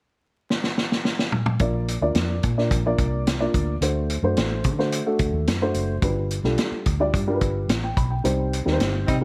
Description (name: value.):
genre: uptempo 1960s-style soul.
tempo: 108 BPM.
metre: 4/4.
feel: straight.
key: Bb major.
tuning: A4 = 440 Hz.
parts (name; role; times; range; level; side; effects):
vintage drum kit; drums; 0.5-9.2 s; hi-hat, kick drum, snare drum, toms; -26 LUFS; equal; none.
dark upright piano; accompaniment; 1.6-9.2 s; G3 to B5; -27 LUFS; equal; none.
vintage muted fingered electric bass; bass; 1.6-9.2 s; F#1 to D3; -28 LUFS; equal; none.
warm saxophone section; second line; 9.1-9.2 s; G3 to Eb4; -27 LUFS; equal; none.
room: light reverb, small room ambience.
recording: vinyl crackle.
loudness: -23 LUFS.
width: mono.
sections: 0.0-1.6 A section; 1.6-9.2 B section.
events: drum fill 0.5-1.6; band accent 8.2-9.2.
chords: 0.0 N.C.; 1.6 Bb; 3.8 D7; 6.0 G7; 8.2 Cm.